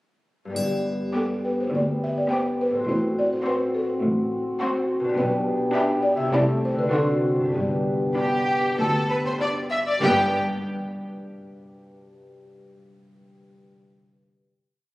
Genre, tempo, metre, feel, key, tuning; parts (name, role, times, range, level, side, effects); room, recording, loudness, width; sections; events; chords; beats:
cinematic, playful, whimsical film cue; 95-105 BPM; 4/4; straight; G major; A4 = 440 Hz
warm French horn section; sustained chords; 0.5-10.3 s; A3 to G4; -26 LUFS; left 1 dB
concert harp; arpeggios; 0.5-10.4 s; G2 to G5; -30 LUFS; left 1 dB
buzzing marimba with soft mallets; melody; 0.6-10.4 s; G4 to E5; -27 LUFS; equal
clear studio cello section; bass; 0.6-10.4 s; D2 to D3; -28 LUFS; equal
rich studio double bass section; bass; 0.6-10.4 s; G1 to D2; -33 LUFS; equal
triangle; percussion; 0.6-1.7 s; -39 LUFS; left 1 dB
rich studio violin section; second line; 1.1-10.4 s; F#4 to E5; -26 LUFS; equal
rich studio viola section; accompaniment; 1.1-10.4 s; B3 to E4; -31 LUFS; equal
rich studio violin section; melody; 1.2-10.4 s; G5 to D6; -36 LUFS; left 1 dB
wet scoring stage reverb, RT60 2.0 s; recorded on a phone in the room, studio reverb, lossy compression artefacts; -21 LUFS; side -19 dB against mid
0.6-10.0 A section; 10.0-12.4 final chord
0.6 G; 2.9 F#dim/A; 5.2 G/B; 6.3 Am7/C; 6.9 D7; 7.5 G
| 0.56 1.15 1.73 2.31 | 2.89 3.46 4.03 4.60 | 5.18 5.75 6.33 6.93 | 7.54 8.16 8.78 9.40 | 10.03